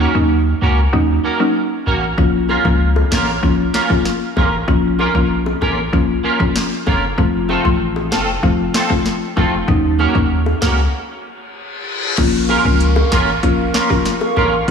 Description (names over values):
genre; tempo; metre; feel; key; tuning
dancehall; 96 BPM; 4/4; straight; Bb harmonic minor; A4 = 441 Hz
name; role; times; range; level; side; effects
mallet-like synth pluck; accompaniment; 0.0-14.7 s; F3 to F4; -19 LUFS; left 3 dB; chorus, sidechain pumping
clean electric guitar; arpeggios; 0.0-14.5 s; A3 to Bb4; -20 LUFS; right 3 dB; ensemble chorus, tape echo
punchy sub bass; bass; 0.0-14.7 s; F1 to Eb2; -18 LUFS; equal; none
afro-pop drum kit; drums; 2.2-14.7 s; crash cymbal, hi-hat, kick drum, rim click, snare drum; -19 LUFS; equal; none
bongos; percussion; 2.5-14.5 s; none; -26 LUFS; left 5 dB; none
reverse cymbal and downlifter; sound effects; 11.5-14.7 s; none; -25 LUFS; left 3 dB; none
hollow soft pad; sustained chords; 12.4-14.7 s; Bb4 to Db6; -21 LUFS; right 4 dB; chorus, sidechain pumping
room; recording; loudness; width
moderate lush hall reverb, RT60 2.1 s; dreamy mix soaked in reverb, small room ambience; -13 LUFS; side -6 dB against mid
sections
0.0-12.2 A section; 12.2-14.7 B section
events
break 10.9-12.2; reverse cymbal 11.5-12.2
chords
0.0 Ebm7; 2.2 Bbm; 7.2 F; 9.7 Ebm7; 12.2 Bbm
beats
0.30 0.93 1.55 | 2.18 2.81 3.43 4.05 | 4.68 5.30 5.93 6.55 | 7.18 7.80 8.43 9.05 | 9.68 10.30 10.93 11.55 | 12.18 12.80 13.43 14.05 | 14.68